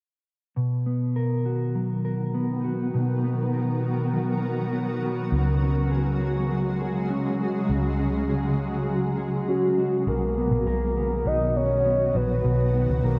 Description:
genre	dream pop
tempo	101 BPM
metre	4/4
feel	straight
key	B major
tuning	A4 = 440 Hz
part	shimmering ambient pad	sustained chords	1.6-13.2 s	C#3 to A#4	-31 LUFS	equal	chorus, built-in reverb
part	mellow electric guitar	arpeggios	0.6-13.2 s	B2 to A#4	-28 LUFS	equal	subtle chorus, tape echo
part	vintage muted picked electric bass	bass	5.3-13.2 s	A#1 to C#2	-30 LUFS	equal	none
part	soft octave-layered synth lead	melody	9.5-13.2 s	F#4 to D#5	-27 LUFS	equal	chorus, tremolo, tape echo
room	wet lush hall reverb, RT60 2.6 s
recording	dreamy mix soaked in reverb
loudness	-25 LUFS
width	mono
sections	0.6-10.1 A section; 10.1-13.2 B section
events	none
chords	0.6 Bmaj7; 5.3 C#sus4; 10.1 Bmaj7

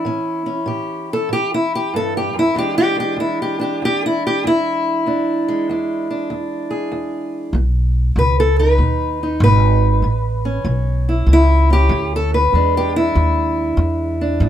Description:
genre	acoustic country blues, solo or duo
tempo	96 BPM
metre	4/4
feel	swing 65% on 8ths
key	E mixolydian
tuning	A4 = 440 Hz
part	fingerpicked steel-string acoustic guitar	melody	0.0-14.5 s	E2 to B4	-17 LUFS	equal	none
part	upright bass	bass	7.5-14.5 s	G#1 to G#2	-16 LUFS	equal	none
room	light reverb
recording	close, detailed microphones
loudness	-15 LUFS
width	side -10 dB against mid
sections	0.0-14.5 A section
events	steel-string acoustic guitar solo 0.0-14.5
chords	0.0 A7; 2.6 E7; 7.5 B; 10.0 A; 12.5 E7

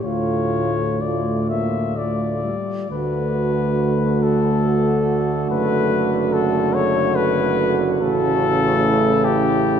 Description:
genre	classical, hymn-like piece for brass band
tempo	60-74 BPM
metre	3/4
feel	rubato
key	D major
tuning	A4 = 439 Hz
part	dark cornet	melody	0.0-9.8 s	G4 to E5	-22 LUFS	left 6 dB	none
part	warm French horn section	second line	0.0-9.8 s	E4 to F#4	-24 LUFS	right 6 dB	none
part	bright trombone	accompaniment	0.0-9.8 s	A2 to D3	-26 LUFS	right 2 dB	none
part	mellow euphonium	accompaniment	0.0-9.8 s	G3 to Bb3	-25 LUFS	equal	none
part	warm tuba	bass	0.0-9.8 s	F#1 to D2	-24 LUFS	equal	none
room	wet church reverb, RT60 3.5 s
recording	none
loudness	-17 LUFS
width	side -8 dB against mid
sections	0.0-2.9 A section; 2.9-9.8 B section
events	none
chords	0.0 Dm; 2.9 D; 5.5 D/F#; 8.0 A

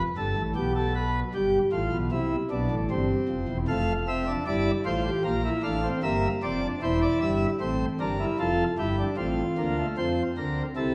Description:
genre	classical, baroque-style 3-part fugue for pipe organ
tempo	76 BPM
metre	4/4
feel	straight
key	F major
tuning	A4 = 435 Hz
part	pipe organ, principal chorus	solo	0.0-10.9 s	E1 to F5	-27 LUFS	equal	none
room	wet recital hall reverb, RT60 1.4 s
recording	none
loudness	-27 LUFS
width	mono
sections	0.0-10.0 A section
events	none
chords	0.0 Fadd9 (rootless); 0.6 G7/B; 2.1 C; 3.7 F; 5.2 Gm7; 6.8 C7/E; 8.4 F

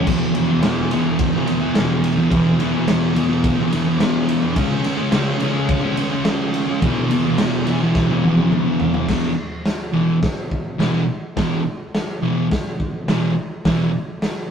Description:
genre	garage rock duo or trio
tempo	106 BPM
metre	4/4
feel	straight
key	E major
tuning	A4 = 440 Hz
part	fuzz guitar	riff	0.0-13.9 s	E2 to C#4	-17 LUFS	equal	distortion
part	raw garage drum kit	drums	0.1-14.4 s	crash cymbal, hi-hat, kick drum, ride cymbal, snare drum, splash cymbal, toms	-22 LUFS	equal	none
room	moderate studio reverb, RT60 0.5 s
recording	rough rehearsal-room recording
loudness	-17 LUFS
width	side -7 dB against mid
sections	0.0-9.1 A section; 9.1-14.5 B section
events	drum fill 8.0-9.1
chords	0.1 E5; 4.6 C#5; 6.8 E5

